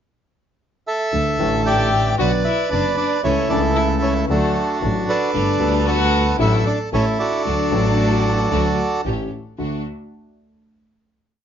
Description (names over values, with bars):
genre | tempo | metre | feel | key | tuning
tango | 114 BPM | 4/4 | rubato | D major | A4 = 440 Hz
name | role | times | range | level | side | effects
bandoneon | melody | 0.9-9.0 s | D4 to G5 | -20 LUFS | right 3 dB | slapback echo, plate reverb
warm grand piano | accompaniment | 1.1-9.8 s | F#1 to A4 | -23 LUFS | left 3 dB | none
clear double bass | bass | 1.1-9.8 s | F#1 to D2 | -22 LUFS | equal | none
warm violin | second line | 1.7-9.0 s | A3 to G4 | -25 LUFS | left 6 dB | none
bright chamber string section | stabs | 5.3-9.8 s | G3 to G4 | -30 LUFS | equal | none
room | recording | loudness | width
moderate studio reverb, RT60 0.5 s | nothing above 7.5 kHz | -16 LUFS | side -8 dB against mid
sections
0.0-1.1 pickup bar; 1.1-9.6 A section; 9.6-11.4 final chord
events
none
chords
0.0 N.C.; 1.1 Dsus2; 2.2 Bm; 3.2 A/C#; 4.3 D; 5.3 Gadd9; 6.4 D/A; 6.9 A; 7.5 D; 9.1 A7; 9.6 D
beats
0.07 0.60 | 1.13 1.66 2.19 2.71 | 3.24 3.77 4.29 4.82 | 5.34 5.87 6.40 6.93 | 7.46 7.99 8.52 9.05 | 9.58